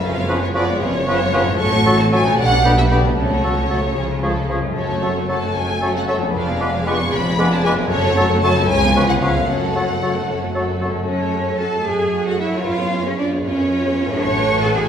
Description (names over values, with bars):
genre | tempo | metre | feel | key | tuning
cinematic, playful, whimsical film cue | 76 BPM (dotted quarters) | 6/8 | straight | F# minor | A4 = 435 Hz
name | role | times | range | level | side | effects
rich studio violin section | melody | 0.0-14.9 s | B4 to C#6 | -23 LUFS | equal | none
rich studio violin section | second line | 0.0-14.9 s | D4 to C#6 | -25 LUFS | left 2 dB | none
rich studio viola section | accompaniment | 0.0-14.9 s | D3 to A4 | -26 LUFS | right 2 dB | none
concert harp | arpeggios | 0.0-14.9 s | F2 to B4 | -25 LUFS | left 3 dB | none
dark studio double bass section | bass | 0.0-14.9 s | F1 to F#2 | -24 LUFS | right 2 dB | none
warm studio cello section | bass | 0.0-14.8 s | C#2 to C#5 | -23 LUFS | right 1 dB | none
clear oboe | second line | 0.3-10.9 s | G4 to B4 | -29 LUFS | equal | none
hollow concert flute | second line | 0.3-10.9 s | B5 to D6 | -28 LUFS | left 2 dB | none
mellow bassoon | accompaniment | 0.3-10.9 s | E#3 to B3 | -27 LUFS | right 1 dB | none
warm French horn section | sustained chords | 0.3-10.9 s | G3 to Ab4 | -27 LUFS | left 2 dB | none
room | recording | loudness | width
wet recital hall reverb, RT60 1.5 s | recorded in a church or concert hall | -16 LUFS | side -8 dB against mid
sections
0.0-11.1 A section; 11.1-14.9 A section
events
none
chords
0.0 C#7/F#; 1.6 F#m/A; 2.4 G/B; 3.2 F#m/C#; 4.0 C#; 4.8 F#m; 6.3 Fdim7; 7.9 F#m; 8.7 C#7; 9.5 F#m; 12.7 C#7/F#; 14.2 F#m/A